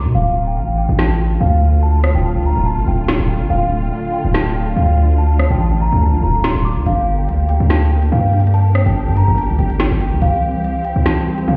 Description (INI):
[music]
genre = hip hop, drill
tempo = 143 BPM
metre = 4/4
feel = half-time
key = D minor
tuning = A4 = 440 Hz
[part]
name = celesta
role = melody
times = 0.0-11.6 s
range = F5 to D6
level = -24 LUFS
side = equal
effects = delay
[part]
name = distorted 808-style bass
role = bass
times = 0.0-11.6 s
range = D1 to C3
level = -17 LUFS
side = equal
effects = distortion
[part]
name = dark symphonic string section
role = sustained chords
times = 0.1-11.6 s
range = D3 to G4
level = -26 LUFS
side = equal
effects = none
[part]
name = drill drum kit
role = drums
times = 1.0-11.5 s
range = hi-hat, rim click, snare drum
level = -24 LUFS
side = equal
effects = none
[sound]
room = light reverb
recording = heard muffled through a wall, stone room reverb, EQ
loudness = -16 LUFS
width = mono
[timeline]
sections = 0.0-11.6 A section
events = hi-hats muted 0.1-6.9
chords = 0.1 Dm; 6.9 Gm; 10.2 C